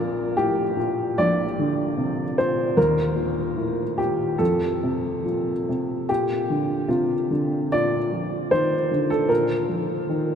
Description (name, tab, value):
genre	neoclassical minimalist piano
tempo	70-78 BPM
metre	4/4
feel	rubato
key	Bb major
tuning	A4 = 440 Hz
part	warm upright piano	solo	0.0-10.3 s	Bb1 to D5	-21 LUFS	equal	none
room	wet cathedral reverb, RT60 5.9 s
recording	recorded in a church or concert hall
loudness	-21 LUFS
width	side -8 dB against mid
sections	0.0-6.1 A section; 6.1-10.3 A section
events	none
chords	0.0 Gm/Bb; 2.8 Eb5; 4.4 F; 6.1 Bb